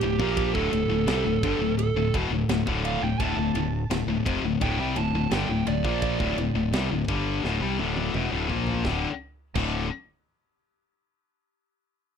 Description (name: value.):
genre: heavy metal.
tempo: 85 BPM.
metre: 4/4.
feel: straight.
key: D minor.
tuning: A4 = 440 Hz.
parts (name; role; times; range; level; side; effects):
dark smooth lead guitar; melody; 0.0-6.4 s; G4 to A5; -30 LUFS; right 10 dB; overdrive, digital delay.
heavy high-gain guitar; riff; 0.0-9.8 s; D2 to Bb3; -26 LUFS; left 8 dB; distortion.
scooped high-gain guitar; riff; 0.0-9.8 s; D2 to Bb3; -33 LUFS; right 13 dB; distortion.
modern bright fingered electric bass; bass; 0.0-9.9 s; D1 to C2; -30 LUFS; right 1 dB; none.
tight metal drum kit; drums; 0.0-9.7 s; crash cymbal, kick drum, ride cymbal, snare drum, toms; -32 LUFS; right 1 dB; none.
room: light reverb.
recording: rough home demo mix.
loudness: -23 LUFS.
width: side -7 dB against mid.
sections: 0.0-8.9 A section; 8.9-11.7 B section.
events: lead electric guitar solo 0.0-8.9; drum fill 7.4-8.9.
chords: 0.0 Dm; 8.9 D5.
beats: | 0.37 1.07 1.78 2.49 | 3.19 3.90 4.61 5.31 | 6.02 6.73 7.44 8.14 | 8.85 9.56.